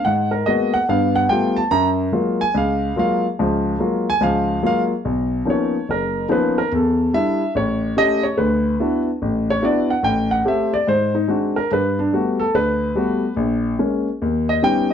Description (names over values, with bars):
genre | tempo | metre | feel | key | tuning
solo jazz | 144 BPM | 4/4 | swing 66% on 8ths | unclear | A4 = 443 Hz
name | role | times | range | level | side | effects
warm grand piano | solo | 0.0-14.9 s | F#1 to A#5 | -17 LUFS | equal | none
room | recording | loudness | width
moderate studio reverb, RT60 0.8 s | dark, warm production | -17 LUFS | side -8 dB against mid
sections
0.0-5.0 A section; 5.0-14.9 A section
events
grand piano solo 0.0-5.0, 5.0-14.9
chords
0.0 G#m9; 0.9 G9; 1.7 F#maj9; 5.0 Bmaj9#11; 6.7 Em7; 7.5 A7; 8.4 D69; 10.0 Am7; 10.9 G#7#11; 11.7 Gmaj9; 13.4 A#m7; 14.2 D#aug7